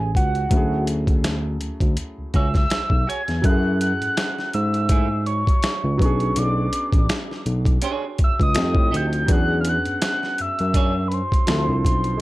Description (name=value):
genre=R&B, neo-soul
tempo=82 BPM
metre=4/4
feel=swing 55% on 16ths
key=unclear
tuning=A4 = 444 Hz
part: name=soft octave-layered synth lead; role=melody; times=0.0-12.2 s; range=F#5 to G#6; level=-25 LUFS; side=right 1 dB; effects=chorus
part: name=warm concert grand piano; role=accompaniment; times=0.0-12.2 s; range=F3 to A4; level=-28 LUFS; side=left 1 dB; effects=none
part: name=barky tine electric piano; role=bass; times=0.0-12.2 s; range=A1 to A2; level=-23 LUFS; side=equal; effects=medium stereo tremolo
part: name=boom bap sampler-style drum kit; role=drums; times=0.1-12.2 s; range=finger snaps, hi-hat, kick drum, snare drum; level=-20 LUFS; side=equal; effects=none
part: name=clean electric guitar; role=second line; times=2.3-10.9 s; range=A3 to Eb5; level=-29 LUFS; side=right 5 dB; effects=spring reverb
room=little or no reverb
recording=dark, warm production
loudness=-18 LUFS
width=side -18 dB against mid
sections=0.0-3.4 A section; 3.4-12.2 B section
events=none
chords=0.0 Amaj9; 0.5 Dmaj9#11; 3.4 F#m9; 6.0 Bm69; 8.6 F9; 9.3 E13; 11.5 Dm7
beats=| 0.50 1.24 1.97 2.70 | 3.43 4.16 4.89 5.63 | 6.36 7.09 7.82 8.55 | 9.28 10.02 10.75 11.48